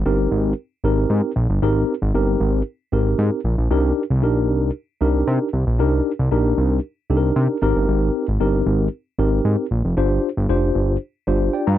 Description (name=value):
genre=early-eighties boogie funk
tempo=115 BPM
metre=4/4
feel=straight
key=C minor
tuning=A4 = 439 Hz
part: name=fat analog bass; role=bass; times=0.0-11.8 s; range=F1 to C3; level=-19 LUFS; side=equal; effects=none
part: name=mellow tine electric piano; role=accompaniment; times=0.1-11.8 s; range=C4 to Bb5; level=-20 LUFS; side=left 1 dB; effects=medium stereo tremolo
room=little or no reverb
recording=dry, close 1970s-style studio recording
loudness=-17 LUFS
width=side -12 dB against mid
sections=0.0-11.8 A section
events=none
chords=0.0 Abmaj9; 3.7 Cm7; 7.6 Abmaj9; 10.0 G7sus4